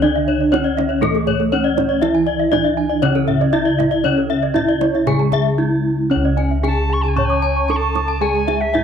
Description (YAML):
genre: Balinese gamelan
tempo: 117 BPM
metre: 4/4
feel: straight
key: C# pelog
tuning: A4 = 440 Hz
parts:
  - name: gamelan-type bronze metallophone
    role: melody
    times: 0.0-8.8 s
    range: A3 to C#5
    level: -20 LUFS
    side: equal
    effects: none
  - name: gamelan-type bronze metallophone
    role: accompaniment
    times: 0.0-8.8 s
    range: C#3 to C#4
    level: -27 LUFS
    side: right 12 dB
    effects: none
  - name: gamelan-type bronze metallophone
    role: arpeggios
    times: 0.0-8.8 s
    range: A4 to C#6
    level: -22 LUFS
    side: left 10 dB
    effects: none
  - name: gamelan-type bossed gongs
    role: bass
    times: 0.0-8.8 s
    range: C#2 to G#4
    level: -20 LUFS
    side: left 1 dB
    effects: none
  - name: gamelan-type bronze metallophone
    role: arpeggios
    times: 0.2-8.7 s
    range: G#4 to D6+35c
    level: -26 LUFS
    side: right 11 dB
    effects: none
  - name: kendang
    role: percussion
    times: 0.5-8.8 s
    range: none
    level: -26 LUFS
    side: right 10 dB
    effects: none
  - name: alto recorder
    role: second line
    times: 6.7-8.8 s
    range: E5 to C#6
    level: -22 LUFS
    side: equal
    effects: none
room: moderate spring reverb, RT60 1.6 s, small room ambience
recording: 1960s-style stereo with parts hard left and right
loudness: -15 LUFS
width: side -7 dB against mid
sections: 0.0-6.1 A section; 6.1-8.8 B section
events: none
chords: none